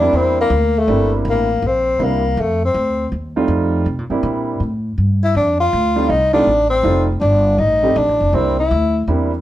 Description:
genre	jazz, small-group swing and bop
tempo	161 BPM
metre	4/4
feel	swing 65% on 8ths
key	C mixolydian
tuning	A4 = 440 Hz
part	breathy tenor saxophone	melody	0.0-9.1 s	A3 to F4	-16 LUFS	left 2 dB	none
part	warm concert grand piano	accompaniment	0.0-9.3 s	G3 to G4	-19 LUFS	right 3 dB	none
part	upright bass	bass	0.0-9.4 s	F1 to C3	-19 LUFS	equal	none
room	moderate studio reverb, RT60 0.6 s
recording	heard from further back in the room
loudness	-14 LUFS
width	side -13 dB against mid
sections	0.0-9.4 A section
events	none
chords	0.0 C7; 2.4 F7; 3.9 C7; 5.3 F7; 8.3 C7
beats	0.13 0.50 | 0.88 1.25 1.62 1.99 | 2.37 2.74 3.11 3.49 | 3.86 4.23 4.60 4.98 | 5.35 5.72 6.10 6.47 | 6.84 7.21 7.59 7.96 | 8.33 8.71 9.08

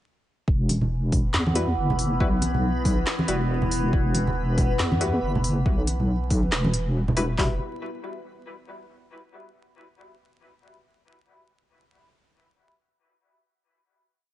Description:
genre	deep dubstep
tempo	139 BPM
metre	4/4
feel	swing 58% on 16ths, half-time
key	unclear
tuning	A4 = 442 Hz
part	overtone-sweeping drone	sustained chords	1.3-7.4 s	E3 to B3	-31 LUFS	right 1 dB	chorus, built-in reverb, phaser
part	deep soft wobble bass	bass	0.5-7.6 s	E1 to E2	-25 LUFS	equal	chorus
part	deep house drum kit	drums	0.5-7.5 s	handclaps, kick drum	-24 LUFS	equal	none
part	backwards swelling texture	texture	1.8-7.4 s	B3 to B4	-36 LUFS	left 2 dB	built-in reverb
part	deep house drum kit	drums	0.7-7.3 s	handclaps, hi-hat, snare drum	-29 LUFS	equal	none
part	congas	percussion	0.7-7.2 s	none	-29 LUFS	right 1 dB	none
part	filtered dub chord stab	stabs	1.6-7.5 s	G3 to B4	-32 LUFS	left 2 dB	analog chorus, dub echo
room	light reverb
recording	vinyl crackle, nothing above 10.6 kHz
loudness	-21 LUFS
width	side -14 dB against mid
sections	0.5-7.4 drop; 7.4-9.1 final chord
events	drop 0.5-7.4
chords	0.5 Esus2; 7.4 Emadd9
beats	| 0.48 0.91 1.34 1.77 | 2.20 2.63 3.07 3.50 | 3.93 4.36 4.79 5.22 | 5.66 6.09 6.52 6.95 | 7.38

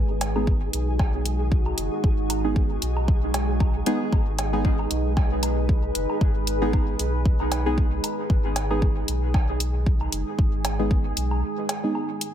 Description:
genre	dub techno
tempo	115 BPM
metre	4/4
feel	swing 56% on 16ths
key	G# minor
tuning	A4 = 439 Hz
part	deep dark ambient pad	sustained chords	0.0-12.3 s	G#3 to B4	-30 LUFS	right 2 dB	chorus, built-in reverb, sidechain pumping
part	warm sub bass	bass	0.0-11.4 s	F#1 to B1	-26 LUFS	equal	sidechain pumping
part	flickering grainy texture	texture	0.0-12.3 s	G#4	-36 LUFS	equal	built-in reverb, sidechain pumping
part	electronic hi-hat	drums	0.2-12.3 s	none	-28 LUFS	left 1 dB	none
part	cowbell and woodblock	percussion	0.2-12.1 s	none	-34 LUFS	right 1 dB	sidechain pumping on perc, dub echo
part	deep mellow chord stab	stabs	0.4-11.9 s	G#3 to G#4	-29 LUFS	right 1 dB	chorus, phaser, sidechain pumping, dub echo
part	electronic kick drum	drums	0.5-11.0 s	none	-22 LUFS	equal	none
room	light reverb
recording	none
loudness	-21 LUFS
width	side -10 dB against mid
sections	0.0-12.3 A section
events	break 11.4-12.3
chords	0.0 G#m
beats	0.47 0.99 1.52 | 2.04 2.56 3.08 3.60 | 4.12 4.65 5.17 5.69 | 6.21 6.73 7.26 7.78 | 8.30 8.82 9.34 9.86 | 10.39 10.91 11.43 11.95

